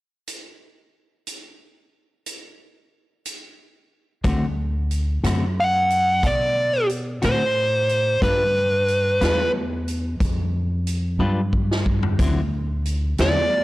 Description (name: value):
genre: slow blues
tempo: 60 BPM (dotted quarters)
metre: 12/8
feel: straight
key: D mixolydian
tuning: A4 = 440 Hz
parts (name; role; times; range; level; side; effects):
- swinging big-band drum kit; drums; 0.3-13.3 s; hi-hat, kick drum, rim click, snare drum, toms; -27 LUFS; equal; none
- clean electric guitar; accompaniment; 4.2-13.4 s; D3 to B4; -27 LUFS; left 3 dB; harmonic tremolo
- upright bass; bass; 4.2-13.6 s; D2 to B2; -23 LUFS; equal; none
- dark smooth lead guitar; melody; 5.6-13.6 s; B4 to F#5; -19 LUFS; equal; overdrive
room: light reverb, small room ambience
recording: blown-out, overdriven recording, overdrive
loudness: -19 LUFS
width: side -18 dB against mid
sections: 0.3-4.2 A section; 4.2-12.2 B section; 12.2-13.6 C section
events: drum fill 11.2-12.2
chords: 0.3 N.C.; 4.2 D7; 8.2 G7; 12.2 D9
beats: | 0.28 1.27 2.26 3.25 | 4.25 5.24 6.23 7.23 | 8.22 9.21 10.21 11.20 | 12.19 13.18